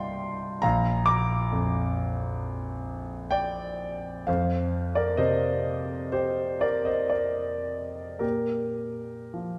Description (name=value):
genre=classical, impressionist solo piano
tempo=52-68 BPM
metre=4/4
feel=rubato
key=Bb major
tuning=A4 = 440 Hz
part: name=warm concert grand piano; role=solo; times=0.0-9.6 s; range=Bb1 to D6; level=-28 LUFS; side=equal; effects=none
room=wet concert hall reverb, RT60 2.4 s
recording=none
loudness=-28 LUFS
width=mono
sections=0.0-9.6 A section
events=none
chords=0.0 Cm7; 0.6 Bb; 4.3 F9sus4; 8.2 Bb5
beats=| 0.64 1.53 2.43 3.33 | 4.28 5.19 6.12 7.13 | 8.23 9.36